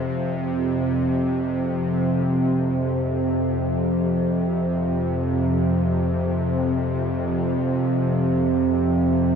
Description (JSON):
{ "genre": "ambient", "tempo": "free time", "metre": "none", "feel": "none", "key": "unclear", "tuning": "A4 = 440 Hz", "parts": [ { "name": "bowed-like drone", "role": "drone", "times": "0.0-9.4 s", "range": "F2 to C3", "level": "-20 LUFS", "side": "equal", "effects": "built-in reverb" } ], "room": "wet huge ambient reverb, RT60 8.3 s", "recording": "none", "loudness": "-20 LUFS", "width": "side -6 dB against mid", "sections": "0.0-2.3 A section; 2.3-9.4 B section", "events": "none", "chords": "0.0 F5", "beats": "free time" }